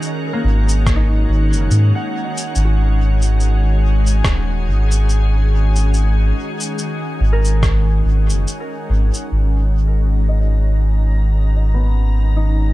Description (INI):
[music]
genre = ambient dub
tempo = 71 BPM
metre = 4/4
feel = swing 57% on 16ths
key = unclear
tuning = A4 = 441 Hz
[part]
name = soft additive organ-like pad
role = sustained chords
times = 0.0-12.7 s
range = D#3 to A#5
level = -24 LUFS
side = left 1 dB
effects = ensemble chorus, built-in reverb
[part]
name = concert harp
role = arpeggios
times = 0.0-12.7 s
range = A#3 to F#5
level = -28 LUFS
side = equal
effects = low-pass filter, dub echo
[part]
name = electronic cabasa and rim click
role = drums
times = 0.0-9.3 s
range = none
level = -26 LUFS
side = equal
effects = low-pass filter on perc, low-pass filter on snare, low-pass filter on room, dub echo
[part]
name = soft dub sub bass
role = bass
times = 0.4-12.7 s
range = D#1 to G#2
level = -14 LUFS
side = equal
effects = none
[part]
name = electronic kick drum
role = drums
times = 0.9-7.8 s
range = none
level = -18 LUFS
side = equal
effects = none
[sound]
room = little or no reverb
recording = none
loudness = -14 LUFS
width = side -17 dB against mid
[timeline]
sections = 0.0-9.3 A section; 9.3-12.7 B section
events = filter sweep on harp 9.3-12.7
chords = 0.0 D#m; 9.3 G#m7